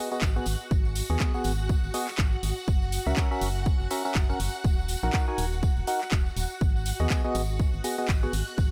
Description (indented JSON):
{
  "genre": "piano house",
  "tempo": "122 BPM",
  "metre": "4/4",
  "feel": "swing 58% on 16ths",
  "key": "G# minor",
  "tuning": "A4 = 441 Hz",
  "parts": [
    { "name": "string machine, violins", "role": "sustained chords", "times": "0.0-8.7 s", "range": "F#4 to F#5", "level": "-40 LUFS", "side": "equal", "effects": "ensemble chorus, sidechain pumping" },
    { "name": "percussive organ stab", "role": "riff", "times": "0.0-8.3 s", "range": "B3 to G#5", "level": "-34 LUFS", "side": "equal", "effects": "chorus, sidechain pumping, dub echo" },
    { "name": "tambourine", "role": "percussion", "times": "0.1-8.7 s", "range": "none", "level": "-44 LUFS", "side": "equal", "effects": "none" },
    { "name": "organ-like FM bass", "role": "bass", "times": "0.2-8.7 s", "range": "D#1 to D#2", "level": "-32 LUFS", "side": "equal", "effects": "sidechain pumping" },
    { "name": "electronic kick drum", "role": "drums", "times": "0.2-8.7 s", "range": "none", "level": "-27 LUFS", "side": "equal", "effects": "overdrive" },
    { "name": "house drum kit", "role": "drums", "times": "0.2-8.4 s", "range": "handclaps, hi-hat", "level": "-37 LUFS", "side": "equal", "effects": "overdrive" }
  ],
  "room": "digital ambience",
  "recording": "none",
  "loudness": "-27 LUFS",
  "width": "mono",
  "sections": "0.0-8.7 A section",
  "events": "none",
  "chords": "0.0 G#m7; 2.7 F#7; 4.6 D#m; 6.6 G#m7"
}